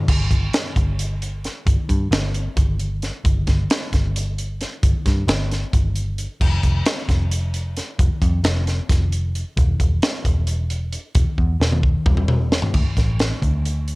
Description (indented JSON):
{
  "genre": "math rock and midwest emo",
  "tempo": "265 BPM (eighths)",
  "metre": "7/8",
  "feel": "straight",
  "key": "unclear",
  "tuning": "A4 = 440 Hz",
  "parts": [
    { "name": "vintage muted picked electric bass", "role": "bass", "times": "0.1-14.0 s", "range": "E1 to G2", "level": "-21 LUFS", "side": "equal", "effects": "none" },
    { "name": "crisp fusion drum kit", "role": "drums", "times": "0.1-14.0 s", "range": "crash cymbal, hi-hat, kick drum, snare drum, toms", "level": "-20 LUFS", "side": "equal", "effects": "cassette tape" }
  ],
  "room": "little or no reverb",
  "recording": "home recording on cassette",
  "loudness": "-18 LUFS",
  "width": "side -24 dB against mid",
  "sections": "0.1-12.7 A section; 12.7-14.0 B section",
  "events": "drum fill 11.4-12.7",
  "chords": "none",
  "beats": "| 0.08 0.31 0.54 0.76 0.99 1.21 1.44 | 1.67 1.89 2.12 2.34 2.57 2.79 3.02 | 3.25 3.47 3.70 3.92 4.15 4.38 4.60 | 4.83 5.05 5.28 5.51 5.73 5.96 6.18 | 6.41 6.64 6.86 7.09 7.31 7.54 7.77 | 7.99 8.22 8.44 8.67 8.90 9.12 9.35 | 9.57 9.80 10.03 10.25 10.48 10.71 10.93 | 11.16 11.38 11.61 11.84 12.06 12.29 12.51 | 12.74 12.97 13.19 13.42 13.65 13.87"
}